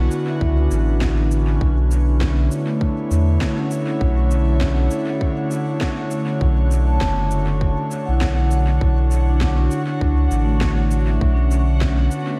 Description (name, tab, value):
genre	ambient dub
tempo	100 BPM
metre	4/4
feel	swing 58% on 16ths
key	B minor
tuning	A4 = 439 Hz
part	airy breathy pad	sustained chords	0.0-12.4 s	D3 to C#5	-26 LUFS	equal	chorus
part	vibraphone with medium mallets	arpeggios	0.0-12.4 s	A3 to A5	-29 LUFS	equal	analog delay
part	warm sub bass	bass	0.0-12.1 s	F#1 to E2	-20 LUFS	equal	none
part	backwards swelling texture	texture	0.0-12.4 s	C#4 to C#6	-36 LUFS	equal	built-in reverb
part	electronic cabasa and snare drum	drums	0.1-12.3 s	none	-34 LUFS	equal	overdrive, dub echo
part	electronic kick drum	drums	0.4-12.0 s	none	-26 LUFS	equal	overdrive
room	light reverb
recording	none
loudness	-19 LUFS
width	mono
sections	0.0-12.4 A section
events	none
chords	0.0 G/B (rootless); 1.6 Bm11; 11.2 G/B (rootless)